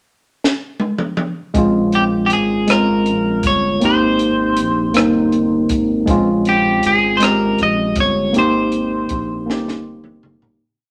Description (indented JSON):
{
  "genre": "slow six-eight R&B",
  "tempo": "53 BPM (dotted quarters)",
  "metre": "6/8",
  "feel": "straight",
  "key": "Bb dorian",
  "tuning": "A4 = 439 Hz",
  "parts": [
    { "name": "compact cocktail drum kit", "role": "drums", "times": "0.4-10.6 s", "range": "hi-hat, kick drum, rim click, snare drum, toms", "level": "-22 LUFS", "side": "equal", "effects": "none" },
    { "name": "tine electric piano", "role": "accompaniment", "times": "1.5-10.6 s", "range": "Ab3 to Bb4", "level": "-18 LUFS", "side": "equal", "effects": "none" },
    { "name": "rubbery square bass", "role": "bass", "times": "1.6-10.6 s", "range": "G1 to Bb1", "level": "-29 LUFS", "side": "equal", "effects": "none" },
    { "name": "electric guitar at the edge of break-up", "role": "melody", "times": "2.0-10.2 s", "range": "G4 to Eb5", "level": "-20 LUFS", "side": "equal", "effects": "none" }
  ],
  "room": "moderate studio reverb, RT60 0.8 s",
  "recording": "none",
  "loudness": "-16 LUFS",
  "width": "mono",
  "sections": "0.0-1.5 pickup bar; 1.5-10.6 verse",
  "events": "drum fill 0.4-1.5, 9.5-10.6; fade-out 8.3-10.6",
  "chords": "0.0 N.C.; 1.5 Bbm9; 3.8 Abmaj9; 6.1 Bbm9; 8.3 Abmaj9",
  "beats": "0.42 | 1.55 2.68 | 3.81 4.95 | 6.08 7.21 | 8.34 9.47"
}